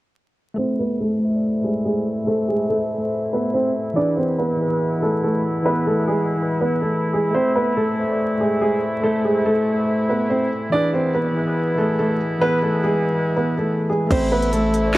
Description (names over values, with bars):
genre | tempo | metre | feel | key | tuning
hip hop, drill | 142 BPM | 4/4 | half-time | A harmonic minor | A4 = 436 Hz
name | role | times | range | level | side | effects
mellow tine electric piano | accompaniment | 0.5-15.0 s | E3 to E5 | -22 LUFS | left 1 dB | low-pass filter
dark baby grand piano | melody | 0.6-15.0 s | G#3 to D5 | -21 LUFS | right 1 dB | low-pass filter
clear woodwind section | sustained chords | 0.6-15.0 s | B2 to E4 | -30 LUFS | right 1 dB | low-pass filter
hard-hitting 808-style bass | bass | 14.1-15.0 s | A1 | -24 LUFS | equal | none
drill drum kit | drums | 14.1-15.0 s | crash cymbal, handclaps, hi-hat, kick drum, snare drum | -23 LUFS | equal | none
room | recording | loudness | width
light reverb, digital ambience | worn, warbling old tape, cassette tape, vinyl crackle, warbly pitch drift | -18 LUFS | side -17 dB against mid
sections
0.6-14.1 A section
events
filter sweep 0.6-14.1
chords
0.6 Am; 4.0 E; 7.3 Am; 10.7 E; 14.1 Am